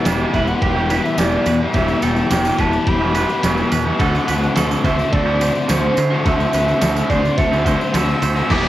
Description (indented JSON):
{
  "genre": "rock, shoegaze and dream pop",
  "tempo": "106 BPM",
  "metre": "4/4",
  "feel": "straight",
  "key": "unclear",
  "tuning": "A4 = 437 Hz",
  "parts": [
    { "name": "deep dark ambient pad", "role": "sustained chords", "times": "1.0-8.7 s", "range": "C5 to D6", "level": "-31 LUFS", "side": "equal", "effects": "none" },
    { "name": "twangy electric guitar", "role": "arpeggios", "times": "0.0-8.7 s", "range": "G4 to C5", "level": "-27 LUFS", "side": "right 6 dB", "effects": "lush chorus, tape echo" },
    { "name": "biting overdriven guitar", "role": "riff", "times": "0.0-8.7 s", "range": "E2 to F#4", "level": "-20 LUFS", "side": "left 5 dB", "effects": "lush chorus" },
    { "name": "twangy electric guitar", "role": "riff", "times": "0.0-8.7 s", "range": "E2 to E4", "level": "-24 LUFS", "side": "right 6 dB", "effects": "reverse reverb" },
    { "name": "fuzz fingered electric bass", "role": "bass", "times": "0.1-8.7 s", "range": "E1 to D3", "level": "-21 LUFS", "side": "equal", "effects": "overdrive" },
    { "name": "lo-fi sampler-style drum kit", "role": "drums", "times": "0.1-8.6 s", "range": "crash cymbal, kick drum, ride cymbal, snare drum", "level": "-23 LUFS", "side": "equal", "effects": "overdrive" },
    { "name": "tambourine", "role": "percussion", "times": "0.1-8.6 s", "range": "none", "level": "-36 LUFS", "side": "right 8 dB", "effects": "none" },
    { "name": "breathy flute-like synth lead", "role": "melody", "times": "0.3-8.7 s", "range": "C5 to E6", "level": "-22 LUFS", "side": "right 2 dB", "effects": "chorus, cassette tape" },
    { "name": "distorted electric guitar", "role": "riff", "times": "8.5-8.7 s", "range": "E3 to E4", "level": "-19 LUFS", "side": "equal", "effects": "overdrive" }
  ],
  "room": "light reverb",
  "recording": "home recording on cassette",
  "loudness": "-15 LUFS",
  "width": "side -14 dB against mid",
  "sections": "0.0-8.5 A section",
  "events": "none",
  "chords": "0.0 Em7; 4.0 D9"
}